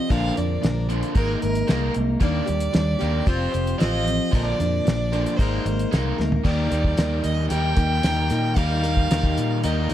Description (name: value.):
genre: folk rock and heartland rock.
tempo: 113 BPM.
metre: 4/4.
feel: straight.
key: unclear.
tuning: A4 = 440 Hz.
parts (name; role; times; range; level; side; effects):
rich fiddle; melody; 0.0-9.9 s; Bb4 to G5; -28 LUFS; right 2 dB; none.
picked plugged-in steel-string acoustic guitar; accompaniment; 0.0-9.9 s; Bb2 to Bb4; -28 LUFS; left 4 dB; none.
raw garage guitar; riff; 0.0-9.9 s; Bb2 to Bb4; -27 LUFS; right 1 dB; overdrive.
fingered electric bass; bass; 0.1-9.9 s; F1 to Bb2; -24 LUFS; equal; none.
cloth-damped thuddy drum kit; drums; 0.1-9.9 s; crash cymbal, hi-hat, kick drum, snare drum, toms; -24 LUFS; equal; none.
tonewheel organ; sustained chords; 6.4-9.9 s; G3 to Bb4; -36 LUFS; right 1 dB; none.
room: small room ambience.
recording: dark, warm production.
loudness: -20 LUFS.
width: side -12 dB against mid.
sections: 0.0-6.5 A section; 6.5-9.9 B section.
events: drum fill 6.2.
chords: 0.1 Bb; 1.2 Absus2; 2.2 Ebmaj7; 3.3 Fsus2; 4.3 Bb; 5.4 Absus2; 6.5 Eb.